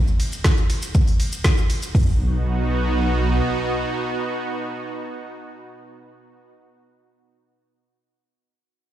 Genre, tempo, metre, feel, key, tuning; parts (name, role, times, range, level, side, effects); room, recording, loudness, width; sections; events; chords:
progressive house; 120 BPM; 4/4; straight; B major; A4 = 439 Hz
deep house drum kit; drums; 0.1-1.9 s; hi-hat, ride cymbal, shaker, snare drum; -27 LUFS; equal; small room ambience
deep house drum kit; drums; 0.4-2.1 s; hi-hat, kick drum, toms; -17 LUFS; equal; small room ambience
supersaw pad; sustained chords; 1.9-6.4 s; B2 to F#4; -25 LUFS; right 2 dB; sidechain pumping
dark detuned saw bass; bass; 1.9-3.4 s; B1; -20 LUFS; equal; sidechain pumping
digital ambience; played on a big sound system in a bare room, stone room reverb; -19 LUFS; side -12 dB against mid
0.0-1.9 A section; 1.9-5.9 B section
drop 0.0-1.9
0.0 N.C.; 1.9 B